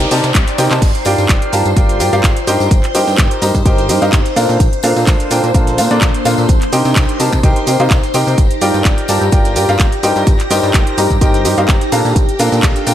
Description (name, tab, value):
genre	piano house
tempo	127 BPM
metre	4/4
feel	swing 54% on 16ths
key	G minor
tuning	A4 = 440 Hz
part	string machine, violins	sustained chords	0.0-12.9 s	G4 to Bb6	-22 LUFS	left 1 dB	ensemble chorus, sidechain pumping
part	clear upright piano	riff	0.0-12.9 s	D4 to Bb5	-16 LUFS	equal	sidechain pumping, dub echo
part	fat analog bass	bass	0.0-12.9 s	G1 to C3	-17 LUFS	equal	sidechain pumping
part	dusty soul sampler-style drum kit	drums	0.0-12.9 s	hi-hat, snare drum	-30 LUFS	right 1 dB	none
part	house drum kit	drums	0.0-12.9 s	crash cymbal, finger snaps, handclaps, hi-hat, shaker	-20 LUFS	right 2 dB	none
part	noise sweep	sound effects	0.0-0.8 s	none	-24 LUFS	left 1 dB	none
part	deep dark ambient pad	texture	0.0-12.9 s	Bb3 to Bb5	-22 LUFS	right 2 dB	chorus, built-in reverb, sidechain pumping
part	tambourine	percussion	0.1-12.9 s	none	-29 LUFS	left 7 dB	none
part	electronic kick drum	drums	0.3-12.7 s	none	-12 LUFS	equal	none
room	digital ambience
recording	none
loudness	-10 LUFS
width	side -11 dB against mid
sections	0.8-12.9 A section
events	noise sweep 0.0-0.8; drum fill 0.3-0.8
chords	0.0 Cm7; 0.8 Gm7; 2.5 Eb6/G; 4.4 Bbmaj7; 6.5 Cm7; 8.4 Gm7; 10.0 Eb6/G; 11.9 Bbmaj7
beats	0.35 | 0.82 1.29 1.76 2.24 | 2.71 3.18 3.65 4.13 | 4.60 5.07 5.54 6.02 | 6.49 6.96 7.43 7.91 | 8.38 8.85 9.32 9.80 | 10.27 10.74 11.21 11.69 | 12.16 12.63